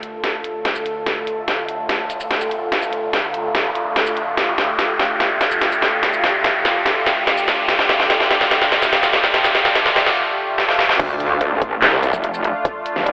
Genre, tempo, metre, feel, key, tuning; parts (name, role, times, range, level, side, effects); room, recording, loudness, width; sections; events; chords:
heavy wobble dubstep; 145 BPM; 4/4; half-time; D minor; A4 = 440 Hz
lush unison pad; sustained chords; 0.0-13.1 s; D2 to A4; -22 LUFS; equal; chorus, sidechain pumping
dubstep drum kit; drums; 0.0-13.1 s; crash cymbal, handclaps, hi-hat, shaker, snare drum; -17 LUFS; equal; high-pass filter on hats, high-pass filter on snare, high-pass filter on perc, high-pass filter on cymbals, high-pass filter on room
riser and impact; sound effects; 1.3-12.7 s; -22 LUFS; equal
metallic wobble bass; bass; 11.0-13.1 s; Eb1 to D2; -20 LUFS; equal; distortion, chorus, overdrive
electronic kick drum; drums; 11.0-12.7 s; -21 LUFS; equal
snarling distorted saw bass; bass; 11.4-12.1 s; C2 to D2; -18 LUFS; equal; overdrive
wet lush hall reverb, RT60 1.7 s, digital ambience; high-pass filter, telephone sound; -15 LUFS; side -27 dB against mid
0.0-11.0 A section; 11.0-13.1 B section
build-up 0.0-11.0; drum fill 0.0-10.2, 10.6-11.0; filter sweep on analog synth pad 0.0-11.0; riser 1.3-10.2; break 10.2-11.0; drop 11.0-13.1; impact 11.0-12.7
0.0 Dm